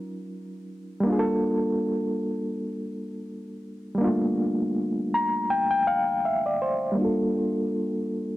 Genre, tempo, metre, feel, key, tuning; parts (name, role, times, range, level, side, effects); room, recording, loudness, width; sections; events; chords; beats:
hip hop; 81 BPM; 4/4; swing 56% on 16ths; G minor; A4 = 445 Hz
barky reed electric piano; solo; 0.0-8.4 s; Gb3 to Bb5; -24 LUFS; equal; overdrive, fast tremolo, low-pass filter, tape echo
moderate studio reverb, RT60 0.6 s; -23 LUFS; side -16 dB against mid
0.0-7.0 A section; 7.0-8.4 B section
reed electric piano fill 4.8-7.0
0.0 Ebm9; 1.1 Gm9
0.32 | 1.06 1.80 2.54 3.28 | 4.02 4.76 5.50 6.24 | 6.98 7.72